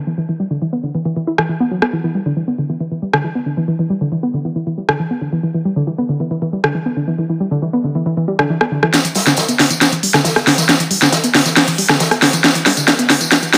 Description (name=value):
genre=driving peak-time techno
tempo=137 BPM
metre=4/4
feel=straight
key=E minor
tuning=A4 = 440 Hz
part: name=warbly dusty pluck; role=riff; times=0.0-13.6 s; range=D3 to E4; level=-20 LUFS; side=equal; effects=chorus, cassette tape, digital delay
part: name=techno drum kit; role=drums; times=1.4-13.6 s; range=hi-hat, rim click, snare drum, tambourine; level=-15 LUFS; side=equal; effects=low-pass filter on snare, low-pass filter on hats, low-pass filter on perc
part: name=swinging big-band drum kit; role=drums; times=8.9-13.6 s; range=hi-hat, snare drum, tambourine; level=-25 LUFS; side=equal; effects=high-pass filter on hats, high-pass filter on snare, high-pass filter on perc, high-pass filter on room
room=light reverb, small room ambience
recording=high-pass filter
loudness=-16 LUFS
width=mono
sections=0.0-8.9 A section; 8.9-13.6 B section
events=build-up 8.9-13.6; drum fill 8.9-13.6; filter sweep on synth arpeggio sound 8.9-13.6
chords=none